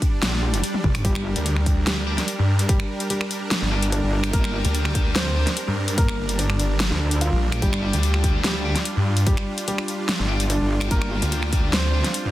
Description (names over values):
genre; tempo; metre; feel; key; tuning
heavy wobble dubstep; 146 BPM; 4/4; half-time; G minor; A4 = 441 Hz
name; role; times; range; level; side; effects
supersaw chords; sustained chords; 0.0-12.3 s; G3 to D5; -30 LUFS; right 1 dB; sidechain pumping
dubstep drum kit; drums; 0.0-12.2 s; finger snaps, hi-hat, snare drum, toms; -26 LUFS; equal; soft clipping on snare
electronic kick drum; drums; 0.0-11.6 s; none; -22 LUFS; equal; none
metallic wobble bass; bass; 0.2-11.2 s; G1 to D2; -23 LUFS; equal; distortion, chorus, overdrive
swell; sound effects; 0.4-1.0 s; none; -33 LUFS; right 4 dB; none
snarling distorted saw bass; bass; 0.8-12.3 s; G1 to G2; -22 LUFS; equal; distortion, overdrive
dark grand piano; melody; 1.0-12.3 s; D3 to F5; -29 LUFS; equal; digital delay
sludgy distorted guitar; stabs; 2.1-12.1 s; G3 to G4; -31 LUFS; left 3 dB; overdrive, digital delay
room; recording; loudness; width
little or no reverb; dense, heavily limited modern master; -19 LUFS; side -15 dB against mid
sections
0.0-12.3 A section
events
swell 0.4-1.0; drum fill 0.7-1.0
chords
0.0 Gm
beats
0.23 0.64 | 1.05 1.46 1.87 2.28 | 2.69 3.10 3.51 3.92 | 4.33 4.75 5.16 5.57 | 5.98 6.39 6.80 7.21 | 7.62 8.03 8.44 8.86 | 9.27 9.68 10.09 10.50 | 10.91 11.32 11.73 12.14